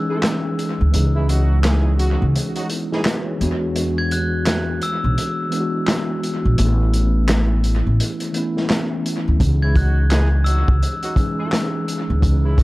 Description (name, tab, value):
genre	hip hop, boom-bap hip-hop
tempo	85 BPM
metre	4/4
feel	swing 62% on 16ths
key	C# minor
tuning	A4 = 440 Hz
part	mellow tine electric piano	accompaniment	0.0-12.6 s	E3 to C#5	-23 LUFS	equal	medium stereo tremolo, cassette tape, high-pass filter, low-pass filter, analog delay
part	mellow horn section	stabs	0.1-3.0, 9.6-12.6 s	C#3 to G#4	-30 LUFS	right 2 dB	high-pass filter, low-pass filter, analog delay
part	vintage drum kit	drums	0.2-12.6 s	handclaps, hi-hat, kick drum, snare drum	-22 LUFS	equal	analog delay
part	upright bass	bass	0.8-12.6 s	A1 to E2	-17 LUFS	equal	none
part	glockenspiel with hard plastic mallets	melody	4.0-5.4, 9.6-11.0 s	E6 to G#6	-28 LUFS	left 1 dB	high-pass filter, low-pass filter, analog delay
room	small room ambience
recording	echo-heavy mix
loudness	-16 LUFS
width	side -19 dB against mid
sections	0.0-12.6 A section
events	break 0.0-9.4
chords	0.0 C#madd9; 3.4 E7; 6.6 Aadd9; 9.4 C#madd9